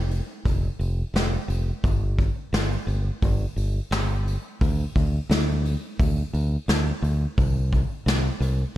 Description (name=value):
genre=folk rock and heartland rock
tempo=87 BPM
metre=4/4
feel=straight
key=unclear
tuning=A4 = 441 Hz
part: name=fingered electric bass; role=bass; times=0.0-8.6 s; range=F1 to D2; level=-24 LUFS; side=equal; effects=none
part: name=soft brush drum kit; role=drums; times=0.1-8.6 s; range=hi-hat, kick drum, snare drum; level=-25 LUFS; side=equal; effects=none
room=little or no reverb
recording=none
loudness=-22 LUFS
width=side -14 dB against mid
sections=0.0-8.8 A section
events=none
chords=none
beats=0.45 1.15 | 1.84 2.53 3.22 3.91 | 4.61 5.30 5.99 6.68 | 7.38 8.07